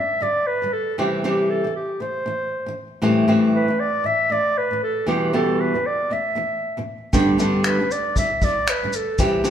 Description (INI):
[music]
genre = acoustic pop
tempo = 117 BPM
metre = 4/4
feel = swing 60% on 16ths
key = G major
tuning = A4 = 440 Hz
[part]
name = warm clarinet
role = melody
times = 0.0-9.5 s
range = G4 to E5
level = -22 LUFS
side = right 1 dB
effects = none
[part]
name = flamenco guitar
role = accompaniment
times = 0.0-9.5 s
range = E2 to G4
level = -21 LUFS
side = equal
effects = none
[part]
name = vintage brush drum kit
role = drums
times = 7.1-9.5 s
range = finger snaps, kick drum, shaker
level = -23 LUFS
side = left 1 dB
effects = none
[sound]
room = wet large studio reverb, RT60 1.5 s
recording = band playing live in one room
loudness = -18 LUFS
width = side -9 dB against mid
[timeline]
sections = 0.0-9.5 A section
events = none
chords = 0.0 G; 1.0 C; 3.0 Am7; 5.1 Em; 7.1 G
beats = 0.46 | 0.97 1.49 2.00 2.51 | 3.03 3.54 4.05 4.57 | 5.08 5.59 6.11 6.62 | 7.13 7.64 8.16 8.67 | 9.19